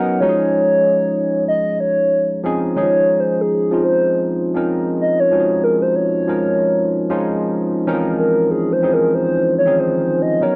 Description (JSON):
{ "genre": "R&B", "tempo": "94 BPM", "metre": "4/4", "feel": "swing 60% on 16ths", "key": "Db major", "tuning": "A4 = 440 Hz", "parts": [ { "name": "hollow clarinet-like synth lead", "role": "melody", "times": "0.0-10.6 s", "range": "Ab4 to Gb5", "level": "-19 LUFS", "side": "equal", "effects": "chorus, slapback echo" }, { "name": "barky tine electric piano", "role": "accompaniment", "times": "0.0-10.6 s", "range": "Eb3 to Bb4", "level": "-21 LUFS", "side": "equal", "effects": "analog chorus" } ], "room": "digital ambience", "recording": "dry, close 1970s-style studio recording", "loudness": "-17 LUFS", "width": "mono", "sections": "0.0-2.8 A section; 2.8-10.6 B section", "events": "soft synth lead solo 2.8-10.6", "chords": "0.2 Dbmaj9" }